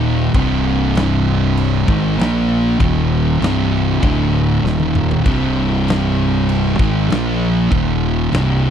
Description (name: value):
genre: stoner and doom metal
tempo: 98 BPM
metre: 4/4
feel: straight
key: C minor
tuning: A4 = 440 Hz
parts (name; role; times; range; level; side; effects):
- thick fuzz guitar; riff; 0.0-8.7 s; C2 to Bb3; -19 LUFS; left 9 dB; distortion
- thick fuzz guitar; riff; 0.0-8.7 s; C2 to Bb3; -18 LUFS; right 9 dB; distortion
- fuzz fingered electric bass; bass; 0.0-8.7 s; C1 to Bb1; -20 LUFS; equal; overdrive, tube saturation
- big rock drum kit; drums; 0.3-8.5 s; crash cymbal, kick drum, snare drum, toms; -21 LUFS; equal; none
room: little or no reverb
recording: dry, close 1970s-style studio recording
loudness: -14 LUFS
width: side -8 dB against mid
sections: 0.0-8.7 A section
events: drum fill 4.6-5.3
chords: 0.3 Cm; 2.2 Bb5; 2.8 Eb5; 3.4 C5; 4.0 D5; 4.6 Eb5; 5.3 Cm; 7.1 Bb5; 7.7 Eb5